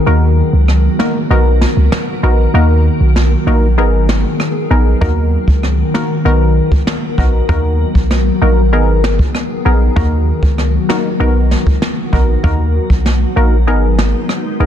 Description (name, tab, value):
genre	dancehall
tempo	97 BPM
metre	4/4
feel	straight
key	Eb minor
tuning	A4 = 440 Hz
part	wavetable chord stab	accompaniment	0.0-14.7 s	Bb3 to Bb4	-18 LUFS	left 1 dB	sidechain pumping
part	glassy FM pad	sustained chords	0.0-14.7 s	Eb3 to A#4	-19 LUFS	left 2 dB	ensemble chorus, built-in reverb, sidechain pumping
part	warm 808-style bass	bass	0.1-14.7 s	Ab1 to Eb2	-12 LUFS	equal	none
part	jazz brush drum kit	drums	0.7-14.4 s	kick drum, rim click, snare drum	-17 LUFS	equal	soft clipping on snare
room	studio ambience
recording	dense, heavily limited modern master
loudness	-10 LUFS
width	side -10 dB against mid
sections	0.0-14.7 A section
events	break 0.0-5.0; kick muted 13.7-14.7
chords	0.1 Ebm; 1.3 Bmaj7; 2.5 Ebm; 3.8 Abmadd9; 5.0 Ebm; 6.3 Bmaj7; 7.5 Ebm; 8.7 Abmadd9; 10.0 Ebm; 11.2 Bmaj7; 12.4 Ebm; 13.7 Abmadd9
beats	| 0.07 0.69 1.30 1.92 | 2.54 3.16 3.78 4.40 | 5.02 5.63 6.25 6.87 | 7.49 8.11 8.73 9.35 | 9.96 10.58 11.20 11.82 | 12.44 13.06 13.68 14.29